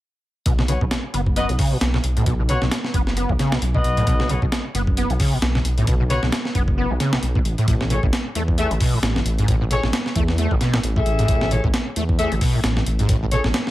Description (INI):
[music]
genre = breakbeat, breaks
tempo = 133 BPM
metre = 4/4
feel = swing 57% on 16ths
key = B mixolydian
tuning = A4 = 438 Hz
[part]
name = overdriven acid bass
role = riff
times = 0.5-13.5 s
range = G#2 to B3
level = -24 LUFS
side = equal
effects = distortion, ensemble chorus, tape echo
[part]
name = dark detuned saw bass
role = bass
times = 0.5-13.5 s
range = F#1 to E2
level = -22 LUFS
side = equal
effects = none
[part]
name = breakbeat sampler-style drum kit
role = drums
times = 0.5-13.7 s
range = hi-hat, kick drum, snare drum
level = -22 LUFS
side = equal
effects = none
[part]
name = mellow horn section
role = stabs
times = 0.7-13.4 s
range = F#4 to E5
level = -26 LUFS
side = left 2 dB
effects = tape echo
[sound]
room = digital ambience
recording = none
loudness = -18 LUFS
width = side -16 dB against mid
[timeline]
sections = 0.5-13.7 A section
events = none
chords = 0.5 Bsus2; 7.7 Amaj7(no3)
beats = | 0.46 0.91 1.36 1.81 | 2.26 2.71 3.17 3.62 | 4.07 4.52 4.97 5.42 | 5.87 6.32 6.78 7.23 | 7.68 8.13 8.58 9.03 | 9.48 9.93 10.38 10.84 | 11.29 11.74 12.19 12.64 | 13.09 13.54